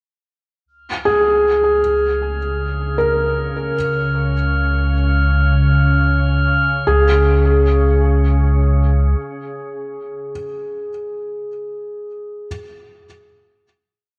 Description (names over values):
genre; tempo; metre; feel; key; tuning
ambient; free time; none; none; Db major; A4 = 441 Hz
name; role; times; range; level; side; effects
warm sub bass; bass; 0.7-9.1 s; Db2; -20 LUFS; equal; none
organ-like drone; drone; 2.5-10.3 s; Db3; -23 LUFS; equal; ensemble chorus, built-in reverb
glass harmonica; texture; 0.7-6.9 s; F6; -26 LUFS; equal; none
felt-muted upright piano; arpeggios; 1.1-12.5 s; Ab4 to Bb4; -22 LUFS; equal; delay
room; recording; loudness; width
wet lush hall reverb, RT60 2.6 s; dark, warm production; -16 LUFS; mono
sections
0.7-6.9 A section; 6.9-10.0 final chord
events
fade-in on sub bass 0.7-6.9; fade-in on synth drone 0.7-6.9; fade-in on glass harmonica 0.7-6.9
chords
0.7 Db; 6.9 Db5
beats
free time